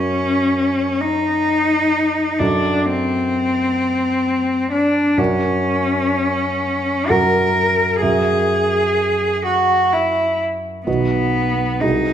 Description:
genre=classical, romantic duo for cello and grand piano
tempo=64 BPM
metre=3/4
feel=rubato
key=F# major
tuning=A4 = 440 Hz
part: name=rich cello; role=melody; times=0.0-12.1 s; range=B3 to A#4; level=-16 LUFS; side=left 1 dB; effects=none
part: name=warm concert grand piano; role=accompaniment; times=0.0-12.1 s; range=B1 to F#5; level=-22 LUFS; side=right 2 dB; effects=none
room=wet recital hall reverb, RT60 1.7 s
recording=none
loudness=-15 LUFS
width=side -9 dB against mid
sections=0.0-12.1 A section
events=none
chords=0.0 F#; 2.4 F#dim7; 5.2 F#; 8.0 F#7; 10.9 B

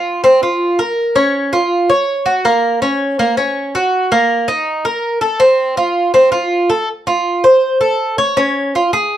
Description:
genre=latin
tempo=162 BPM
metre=4/4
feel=straight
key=unclear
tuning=A4 = 440 Hz
part: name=Cuban tres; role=solo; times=0.0-9.2 s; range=Bb3 to Db5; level=-12 LUFS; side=equal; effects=none
room=moderate studio reverb, RT60 0.6 s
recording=dark, warm production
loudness=-12 LUFS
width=side -11 dB against mid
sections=0.0-6.9 A section; 6.9-9.2 B section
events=none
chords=none

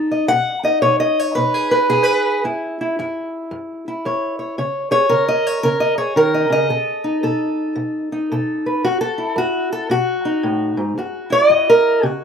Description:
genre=acoustic country blues, solo or duo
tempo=112 BPM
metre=4/4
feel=swing 63% on 8ths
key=unclear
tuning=A4 = 440 Hz
part: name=fingerpicked steel-string acoustic guitar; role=solo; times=0.0-12.2 s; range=F#2 to F#5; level=-16 LUFS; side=equal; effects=slapback echo
room=light reverb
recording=recorded outdoors, with no room sound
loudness=-16 LUFS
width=side -7 dB against mid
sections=0.0-12.2 A section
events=none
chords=0.0 B; 2.4 F#5; 4.6 C#5; 6.7 B7; 8.8 F#m7; 9.9 B7; 11.0 F#7

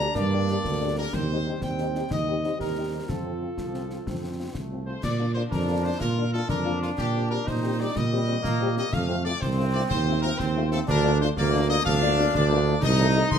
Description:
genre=military-style march for wind band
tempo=123 BPM (dotted quarters)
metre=6/8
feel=straight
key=Bb major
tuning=A4 = 440 Hz
part: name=bright trumpet section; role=melody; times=0.0-13.4 s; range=F4 to C6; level=-31 LUFS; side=left 3 dB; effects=none
part: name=warm euphonium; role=second line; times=0.0-4.7 s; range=Bb3 to G4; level=-33 LUFS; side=right 3 dB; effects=none
part: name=mellow French horn section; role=accompaniment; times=0.0-13.2 s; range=G3 to A4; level=-32 LUFS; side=left 7 dB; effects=none
part: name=warm trombone section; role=sustained chords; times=0.0-13.4 s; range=F3 to F4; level=-31 LUFS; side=left 1 dB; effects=none
part: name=mellow tuba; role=bass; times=0.0-13.4 s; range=C2 to Bb2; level=-26 LUFS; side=right 3 dB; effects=none
part: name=concert snare drum, concert bass drum and clash cymbals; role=drums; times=0.2-13.4 s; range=none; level=-34 LUFS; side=left 2 dB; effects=none
room=moderate large studio reverb, RT60 1.1 s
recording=none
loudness=-23 LUFS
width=side -8 dB against mid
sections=0.0-5.0 A section; 5.0-13.4 B section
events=none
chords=0.0 Gm; 1.1 Cm/Eb; 3.1 F; 5.0 Bb; 7.0 Cm/Bb; 8.9 F; 9.9 F7/Eb; 10.9 Bb/D; 12.8 Adim/C

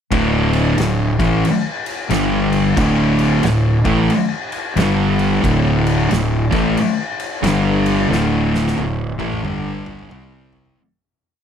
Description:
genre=stoner and doom metal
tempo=90 BPM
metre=4/4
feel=swing 63% on 8ths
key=unclear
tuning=A4 = 441 Hz
part: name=thick fuzz guitar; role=riff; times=0.1-10.8 s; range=D2 to C4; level=-18 LUFS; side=left 8 dB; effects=distortion
part: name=thick fuzz guitar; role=riff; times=0.1-10.8 s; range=D2 to C4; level=-19 LUFS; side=right 8 dB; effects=distortion
part: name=fuzz fingered electric bass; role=bass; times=0.1-10.7 s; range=D1 to C2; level=-22 LUFS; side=equal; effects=overdrive
part: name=oversized low-tuned drum kit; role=drums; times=0.1-10.8 s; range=crash cymbal, kick drum, snare drum, toms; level=-24 LUFS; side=equal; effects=none
room=little or no reverb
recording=none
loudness=-15 LUFS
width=side -8 dB against mid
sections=0.1-10.8 riff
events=fade-out 8.1-10.8; drum fill 8.1-10.8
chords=0.1 D5; 2.1 G5; 2.8 D5; 4.8 G5; 5.4 D5; 7.4 G5; 8.1 D5; 9.4 G5; 10.1 C5

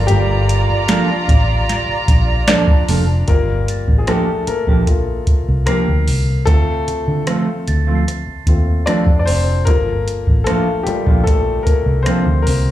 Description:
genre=lush 1970s-style soul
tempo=75 BPM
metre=4/4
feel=straight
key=G minor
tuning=A4 = 440 Hz
part: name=dark studio violin section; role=second line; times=0.0-3.2 s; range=F4 to Bb5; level=-20 LUFS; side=right 2 dB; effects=none
part: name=warm grand piano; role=accompaniment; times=0.0-12.7 s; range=G3 to D5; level=-21 LUFS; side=left 3 dB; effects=plate reverb, slapback echo
part: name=vintage muted fingered electric bass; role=bass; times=0.0-12.7 s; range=F1 to D3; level=-16 LUFS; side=equal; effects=none
part: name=glockenspiel with rubber mallets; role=texture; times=0.0-9.1 s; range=A6 to C7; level=-34 LUFS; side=right 6 dB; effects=stereo widening
part: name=soft vintage rhythm box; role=drums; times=0.1-12.7 s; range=hi-hat, kick drum, rim click, snare drum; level=-16 LUFS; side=equal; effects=none
part: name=mellow electric guitar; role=riff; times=0.9-12.3 s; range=F3 to A4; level=-19 LUFS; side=right 3 dB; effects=wide subtle chorus, slapback echo
room=light reverb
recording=live gig heard through the venue's PA, club reverb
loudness=-13 LUFS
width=side -13 dB against mid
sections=0.0-3.3 A section; 3.3-12.7 B section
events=grand piano solo 0.0-3.3, 3.3-12.7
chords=0.0 Gm9; 3.3 Gm7; 6.5 Dm7; 9.7 Gm7

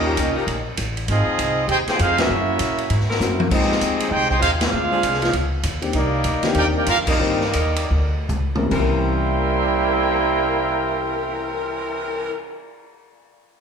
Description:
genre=jazz, big band swing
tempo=139-198 BPM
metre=4/4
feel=swing 63% on 8ths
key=unclear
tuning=A4 = 439 Hz
part: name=clear trumpet section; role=melody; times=0.0-12.3 s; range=Bb3 to C6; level=-23 LUFS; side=right 1 dB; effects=none
part: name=warm trombone section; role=second line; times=0.0-12.3 s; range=C3 to G4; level=-25 LUFS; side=right 4 dB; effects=none
part: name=warm concert grand piano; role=accompaniment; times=0.0-12.4 s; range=C3 to G5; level=-26 LUFS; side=left 3 dB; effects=none
part: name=upright bass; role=bass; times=0.0-12.3 s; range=Ab1 to A#2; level=-24 LUFS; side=equal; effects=none
part: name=warm saxophone section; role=sustained chords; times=0.1-12.3 s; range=Eb3 to Bb4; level=-28 LUFS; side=left 3 dB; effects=none
part: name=swinging big-band drum kit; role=drums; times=0.2-12.1 s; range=crash cymbal, cymbal swell, hi-hat, kick drum, ride cymbal, snare drum, toms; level=-26 LUFS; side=equal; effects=none
room=wet recital hall reverb, RT60 1.4 s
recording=recorded in a church or concert hall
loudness=-18 LUFS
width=side -6 dB against mid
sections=0.0-8.7 A section; 8.7-12.2 B section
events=band accent 2.1, 4.6, 7.0; drum fill 3.2-3.5, 8.3-8.7; slowing down 5.9-8.7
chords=0.0 Eb9; 1.1 Ab6; 2.3 F#7#11; 3.5 Fm9; 4.7 Dm7b5; 5.3 Dbadd9; 5.9 Cm9; 8.7 C7b9

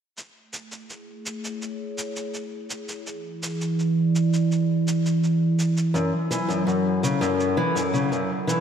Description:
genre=folktronica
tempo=83 BPM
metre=4/4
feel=straight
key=A major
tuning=A4 = 441 Hz
part: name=warbly tape-like pad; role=sustained chords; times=1.3-8.6 s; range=E3 to F#5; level=-24 LUFS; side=right 2 dB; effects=chorus, built-in reverb
part: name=shaker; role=drums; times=0.2-8.6 s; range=none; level=-35 LUFS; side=right 1 dB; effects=overdrive
part: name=fingerpicked steel-string acoustic guitar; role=arpeggios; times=5.9-8.6 s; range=F#2 to E3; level=-23 LUFS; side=left 2 dB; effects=tape echo
room=wet lush hall reverb, RT60 2.5 s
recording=dreamy mix soaked in reverb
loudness=-21 LUFS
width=side -8 dB against mid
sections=0.2-8.6 A section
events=filter sweep on ambient pad 0.2-8.6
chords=0.2 Amaj7; 3.1 E7; 5.9 F#m7

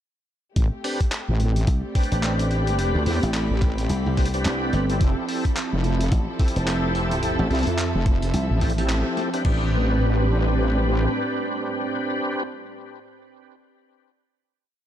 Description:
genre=glitch hop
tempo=108 BPM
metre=4/4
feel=swing 60% on 16ths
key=A minor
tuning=A4 = 440 Hz
part: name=dark studio string section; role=sustained chords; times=0.6-12.4 s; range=A2 to B4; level=-31 LUFS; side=equal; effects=sidechain pumping
part: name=wobble bass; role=bass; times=0.6-11.1 s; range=F1 to E2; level=-22 LUFS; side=equal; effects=chorus, tube saturation
part: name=boom bap sampler-style drum kit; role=drums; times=0.6-9.6 s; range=crash cymbal, handclaps, hi-hat, snare drum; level=-32 LUFS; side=left 1 dB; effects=overdrive
part: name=electronic kick drum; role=drums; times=0.6-9.6 s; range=none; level=-21 LUFS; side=equal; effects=none
part: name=airy breathy pad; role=texture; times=1.2-12.4 s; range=F3 to B5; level=-31 LUFS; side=right 2 dB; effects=chorus, sidechain pumping
part: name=overdriven tonewheel organ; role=stabs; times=0.8-12.4 s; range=C4 to B4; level=-28 LUFS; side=equal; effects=chorus vibrato, slow rotary speaker, vintage 12-bit sampler grit, sidechain pumping, ping-pong delay
part: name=dry thumbed slap bass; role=bass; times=1.7-8.5 s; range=F1 to F2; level=-24 LUFS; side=equal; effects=none
room=light reverb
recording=dark, warm production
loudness=-20 LUFS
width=side -11 dB against mid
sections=0.6-9.5 drop; 9.5-11.7 final chord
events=drop 0.6-9.5; band accent 8.9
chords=0.6 Am11; 5.0 Fmaj7; 9.5 Am11

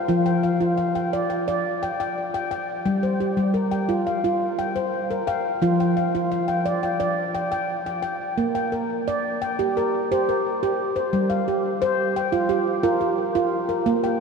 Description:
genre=world meditative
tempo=87 BPM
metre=4/4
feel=straight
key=G minor pentatonic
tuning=A4 = 439 Hz
part: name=handpan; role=solo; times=0.0-14.2 s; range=F3 to G5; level=-21 LUFS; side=equal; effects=ping-pong delay
room=wet huge ambient reverb, RT60 7.9 s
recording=dreamy mix soaked in reverb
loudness=-21 LUFS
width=side -5 dB against mid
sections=0.0-8.4 A section; 8.4-14.2 B section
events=none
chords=0.1 Dmadd11/F; 2.9 Gm; 5.6 Dmadd11/F; 8.4 Bb; 11.1 Gm

